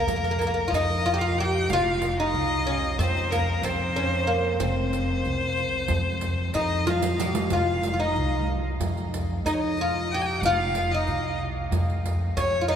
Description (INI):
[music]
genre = Turkish makam ensemble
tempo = 186 BPM (eighths)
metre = 9/8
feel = straight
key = F makam ussak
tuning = A4 = 440 Hz
[part]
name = oud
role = melody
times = 0.0-12.8 s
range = Bb3 to G4-30c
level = -26 LUFS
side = equal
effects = none
[part]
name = clear violin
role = second line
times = 0.0-12.8 s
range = Bb4 to Ab5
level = -29 LUFS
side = left 1 dB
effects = none
[part]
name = upright bass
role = bass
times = 0.0-12.8 s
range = F1 to F2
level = -27 LUFS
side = equal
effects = none
[part]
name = riq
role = percussion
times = 0.1-12.8 s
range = none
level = -35 LUFS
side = right 3 dB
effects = none
[sound]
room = wet cathedral reverb, RT60 6.3 s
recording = recorded in a church or concert hall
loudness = -22 LUFS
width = side -8 dB against mid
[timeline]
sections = 0.0-12.8 A section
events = drum fill 6.9-7.5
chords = none